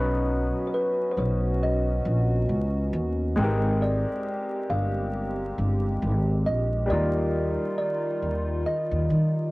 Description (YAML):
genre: hip hop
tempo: 68 BPM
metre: 4/4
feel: swing 57% on 16ths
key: unclear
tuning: A4 = 439 Hz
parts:
  - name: kalimba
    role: melody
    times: 0.0-9.5 s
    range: B4 to F5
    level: -30 LUFS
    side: equal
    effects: low-pass filter, cassette tape
  - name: warm upright piano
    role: accompaniment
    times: 0.0-9.5 s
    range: F#3 to B4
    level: -31 LUFS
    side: left 1 dB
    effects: cassette tape, low-pass filter
  - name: hollow soft pad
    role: sustained chords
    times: 0.2-9.5 s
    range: Eb3 to G4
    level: -33 LUFS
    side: equal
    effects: chorus, low-pass filter
  - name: upright bass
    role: bass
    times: 0.0-9.5 s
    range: G1 to Eb3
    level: -25 LUFS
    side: equal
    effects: none
room: moderate booth ambience, RT60 0.2 s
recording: home recording on cassette, vinyl crackle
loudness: -23 LUFS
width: side -21 dB against mid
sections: 0.0-9.5 A section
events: none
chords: 0.0 Bmaj9; 3.4 Abmaj9; 6.9 Ebmaj9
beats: 0.72 1.61 2.49 | 3.37 4.25 5.14 6.02 | 6.90 7.78 8.67